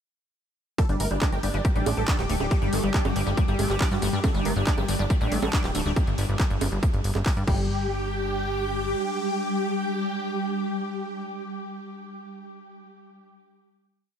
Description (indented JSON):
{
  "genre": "psychedelic trance",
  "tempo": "139 BPM",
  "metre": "4/4",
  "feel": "straight",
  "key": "unclear",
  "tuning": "A4 = 440 Hz",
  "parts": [
    { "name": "dense compressed supersaw", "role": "melody", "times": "0.8-11.2 s", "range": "G3 to Bb4", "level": "-32 LUFS", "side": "equal", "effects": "phaser, sidechain pumping, diffuse ambient delay" },
    { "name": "swarming drone", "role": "sustained chords", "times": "2.2-11.2 s", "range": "G3", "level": "-33 LUFS", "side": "left 1 dB", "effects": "built-in reverb, sidechain pumping" },
    { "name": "liquid acid bass", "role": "riff", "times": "0.8-7.9 s", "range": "F#3 to D4", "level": "-34 LUFS", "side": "moving between left 3 dB and right 3 dB", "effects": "chorus, auto-pan, sidechain pumping, diffuse ambient delay" },
    { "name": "electronic kick drum", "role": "drums", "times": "0.8-7.6 s", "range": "none", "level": "-24 LUFS", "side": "equal", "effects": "overdrive, small room ambience" },
    { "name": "techno drum kit", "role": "drums", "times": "0.8-7.6 s", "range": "bongos, crash cymbal, handclaps, hi-hat", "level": "-32 LUFS", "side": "right 3 dB", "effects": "overdrive, small room ambience" },
    { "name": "airy breathy pad", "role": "texture", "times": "0.8-11.6 s", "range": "D4 to D6", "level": "-36 LUFS", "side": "equal", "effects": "chorus, sidechain pumping" },
    { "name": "plucky analog bass", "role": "bass", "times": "0.9-8.9 s", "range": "D1 to G2", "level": "-27 LUFS", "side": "equal", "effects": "none" }
  ],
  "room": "light reverb",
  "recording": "none",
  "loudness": "-23 LUFS",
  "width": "side -8 dB against mid",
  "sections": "0.8-7.7 drop; 7.7-11.1 final chord",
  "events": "drop 0.8-7.7",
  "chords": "0.8 G5"
}